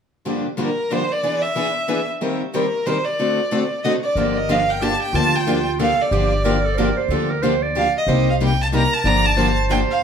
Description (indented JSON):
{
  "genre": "acoustic string swing (jazz manouche)",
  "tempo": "184 BPM",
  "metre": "3/4",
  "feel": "swing 60% on 8ths",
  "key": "G minor",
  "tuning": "A4 = 442 Hz",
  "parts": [
    { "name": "picked steel-string acoustic guitar", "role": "accompaniment", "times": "0.3-9.8 s", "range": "G2 to Bb4", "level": "-23 LUFS", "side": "left 4 dB", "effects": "none" },
    { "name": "picked steel-string acoustic guitar", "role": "accompaniment", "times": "0.3-9.8 s", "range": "G2 to C5", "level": "-26 LUFS", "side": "right 1 dB", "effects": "none" },
    { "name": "warm violin", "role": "melody", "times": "0.6-10.0 s", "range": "Bb4 to Bb5", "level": "-21 LUFS", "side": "right 1 dB", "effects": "plate reverb, tape echo" },
    { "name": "breathy clarinet", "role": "second line", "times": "4.2-10.0 s", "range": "F4 to D5", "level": "-24 LUFS", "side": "right 6 dB", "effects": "none" },
    { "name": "upright bass", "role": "bass", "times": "4.2-9.8 s", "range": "G1 to D2", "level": "-23 LUFS", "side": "equal", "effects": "none" }
  ],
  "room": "moderate studio reverb, RT60 0.8 s",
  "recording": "heard from further back in the room",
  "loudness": "-17 LUFS",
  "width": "side -7 dB against mid",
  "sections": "0.2-4.2 A section; 4.2-10.0 B section",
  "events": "none",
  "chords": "0.2 Gm7; 1.2 E7; 2.2 Eb6; 3.2 D7; 4.2 Gm7; 8.1 Cm7; 9.0 Gm7"
}